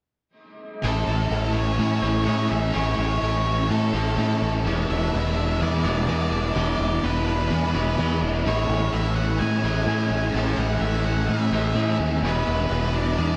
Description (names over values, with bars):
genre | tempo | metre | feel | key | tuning
rock | 126 BPM | 4/4 | straight | A major | A4 = 438 Hz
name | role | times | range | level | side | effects
octave-fuzz lead guitar | melody | 0.8-13.4 s | A4 to A5 | -32 LUFS | equal | distortion, analog delay
twelve-string electric guitar | arpeggios | 0.8-13.4 s | E3 to G#4 | -34 LUFS | equal | analog chorus, analog delay
biting overdriven guitar | riff | 0.8-13.4 s | E2 to E4 | -30 LUFS | equal | ensemble chorus
twangy electric guitar | riff | 0.8-13.4 s | E3 to D5 | -31 LUFS | equal | reverse reverb
growling fingered electric bass | bass | 0.8-13.4 s | E1 to A2 | -26 LUFS | equal | overdrive
room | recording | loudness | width
wet huge ambient reverb, RT60 8.1 s | dreamy mix soaked in reverb | -23 LUFS | mono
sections
0.8-13.4 A section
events
none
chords
0.8 Amaj7; 4.7 E7; 8.5 Amaj7; 12.2 E7